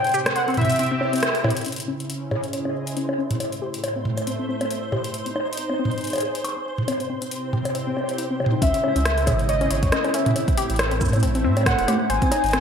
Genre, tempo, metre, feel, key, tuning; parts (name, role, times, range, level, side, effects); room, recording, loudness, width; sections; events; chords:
IDM; 138 BPM; 4/4; swing 56% on 16ths; A4 = 439 Hz
warm velvety synth lead; melody; 0.0-1.4, 8.6-12.6 s; C#5 to G#5; -24 LUFS; equal; chorus, ping-pong delay
warm analog pad; sustained chords; 0.0-12.6 s; A2 to G5; -30 LUFS; right 1 dB; wide subtle chorus, sidechain pumping
booming analog drum machine; drums; 0.0-12.6 s; bongos, hi-hat, rim click, shaker, toms; -24 LUFS; equal; gated reverb
warbly dusty pluck; arpeggios; 0.1-12.6 s; C3 to C#5; -28 LUFS; left 4 dB; chorus, digital delay
flickering grainy texture; texture; 2.0-12.6 s; B#3 to B#4; -35 LUFS; equal; built-in reverb
warm sub bass; bass; 8.6-12.6 s; E1 to A2; -23 LUFS; right 1 dB; tube saturation
electronic kick drum; drums; 8.6-12.3 s; -23 LUFS; right 1 dB
moderate lush hall reverb, RT60 1.6 s; bright 1980s-style digital production; -20 LUFS; side -7 dB against mid
0.0-1.7 A section; 1.7-8.6 B section; 8.6-12.6 A section
break 0.0-1.7; band accent 1.2; drum fill 1.4; filter sweep on synth pluck 1.7-8.6
0.0 C; 1.7 C#madd9; 3.4 Am; 5.1 G#; 6.9 C; 8.6 C#madd9; 10.4 Am; 12.1 G#